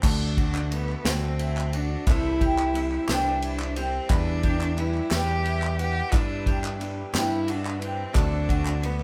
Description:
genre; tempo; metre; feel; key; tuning
indie folk with a building arrangement; 59 BPM (dotted quarters); 6/8; straight; unclear; A4 = 440 Hz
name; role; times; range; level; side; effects
rich cello; melody; 0.0-9.0 s; B3 to G4; -32 LUFS; equal; none
bright upright piano; accompaniment; 0.0-9.0 s; G1 to E5; -42 LUFS; equal; none
fingerpicked steel-string acoustic guitar; accompaniment; 0.0-2.1 s; none; barely audible; none; none
picked steel-string acoustic guitar; accompaniment; 0.0-9.0 s; C3 to C5; -39 LUFS; equal; none
mandolin; arpeggios; 0.0-9.0 s; E4 to F#5; -35 LUFS; equal; none
picked electric bass; bass; 0.0-9.0 s; C2 to G2; -31 LUFS; equal; none
unplugged drum kit; drums; 0.0-9.0 s; crash cymbal, kick drum, ride cymbal, snare drum; -29 LUFS; equal; none
group handclap; percussion; 0.0-9.0 s; none; -38 LUFS; equal; none
room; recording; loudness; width
moderate studio reverb, RT60 0.6 s; band playing live in one room; -25 LUFS; mono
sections
0.0-9.0 A section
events
none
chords
0.0 D7; 2.1 C; 4.1 Em7; 6.1 G6; 8.1 D7

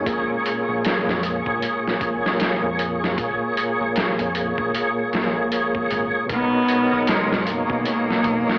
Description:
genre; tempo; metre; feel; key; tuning
trip hop; 77 BPM; 4/4; swing 59% on 16ths; Bb phrygian; A4 = 439 Hz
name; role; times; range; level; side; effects
tonewheel organ; accompaniment; 0.0-8.6 s; Bb2 to Db5; -25 LUFS; equal; overdrive, chorus vibrato, slow rotary speaker, harmonic tremolo, tape echo
deep dub fingered electric bass; bass; 0.0-8.4 s; F#1 to F2; -34 LUFS; equal; none
wind-like tuned noise texture; texture; 0.0-8.6 s; Ab3 to Ab4; -36 LUFS; equal; none
trip hop sampler-style drum kit; drums; 0.1-8.6 s; hi-hat, kick drum, snare drum; -28 LUFS; equal; cassette tape
rich cello; melody; 6.3-8.6 s; Ab3 to B3; -27 LUFS; equal; vintage 12-bit sampler grit, cassette tape, dub echo
room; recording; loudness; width
moderate spring reverb, RT60 2.7 s; home recording on cassette, vinyl crackle, AM radio sound; -22 LUFS; mono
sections
0.0-8.6 A section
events
none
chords
0.1 Bbm7; 6.3 Bmaj9

